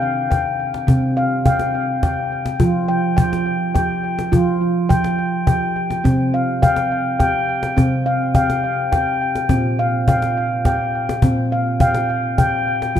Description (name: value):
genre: world meditative, meditative tuned percussion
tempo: 70 BPM (dotted quarters)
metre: 6/8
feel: straight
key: unclear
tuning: A4 = 440 Hz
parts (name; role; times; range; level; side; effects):
- handpan; arpeggios; 0.0-13.0 s; Bb2 to G5; -17 LUFS; equal; tape echo
- cajon; percussion; 0.3-13.0 s; none; -19 LUFS; left 2 dB; none
room: moderate echo chamber reverb, RT60 1.9 s, studio ambience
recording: dark, warm production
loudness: -16 LUFS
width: side -10 dB against mid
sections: 0.0-13.0 A section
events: none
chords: 0.0 C5; 2.6 N.C.; 6.0 C5; 9.5 Bb5